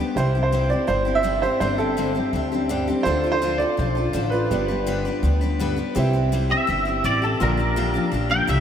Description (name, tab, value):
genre	honky-tonk and classic country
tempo	166 BPM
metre	4/4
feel	straight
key	C major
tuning	A4 = 440 Hz
part	picked steel-string acoustic guitar	accompaniment	0.0-8.6 s	G2 to B4	-25 LUFS	left 3 dB	none
part	warm grand piano	accompaniment	0.1-8.6 s	F4 to E5	-32 LUFS	right 6 dB	none
part	clear upright piano	second line	0.2-5.7 s	A4 to E5	-24 LUFS	right 2 dB	none
part	upright bass	bass	0.2-8.6 s	G1 to D2	-24 LUFS	equal	none
part	twangy electric guitar	melody	6.5-8.6 s	A4 to G5	-22 LUFS	equal	ensemble chorus
room	wet huge ambient reverb, RT60 7.9 s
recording	in a vast, echoing space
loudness	-19 LUFS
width	side -8 dB against mid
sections	0.0-6.0 A section; 6.0-8.6 B section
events	upright piano solo 0.0-6.0; clean electric guitar solo 6.0-8.6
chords	0.2 C; 1.6 Gsus4; 3.1 Dm; 4.5 G; 6.0 C; 7.4 Bb6